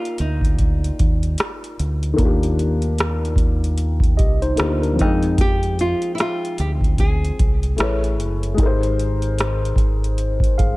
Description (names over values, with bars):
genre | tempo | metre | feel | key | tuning
lo-fi hip hop | 75 BPM | 4/4 | swing 62% on 16ths | Eb major | A4 = 442 Hz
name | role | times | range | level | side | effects
nylon-string guitar | melody | 0.0-8.2 s | Eb4 to Ab4 | -25 LUFS | right 1 dB | analog delay
dark upright piano | accompaniment | 0.0-10.8 s | Eb3 to G5 | -25 LUFS | left 3 dB | cassette tape
booming analog drum machine | drums | 0.1-10.8 s | hi-hat, kick drum, rim click | -20 LUFS | equal | none
deep dub fingered electric bass | bass | 0.2-10.8 s | Gb1 to F2 | -21 LUFS | equal | none
mellow tine electric piano | second line | 4.2-5.2, 10.6-10.8 s | D4 to F5 | -25 LUFS | right 1 dB | medium stereo tremolo
room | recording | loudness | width
little or no reverb | none | -17 LUFS | side -20 dB against mid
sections
0.0-10.8 A section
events
none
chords
0.0 Ebmaj7; 5.0 Fm9; 7.8 Amaj7; 8.6 Abmaj7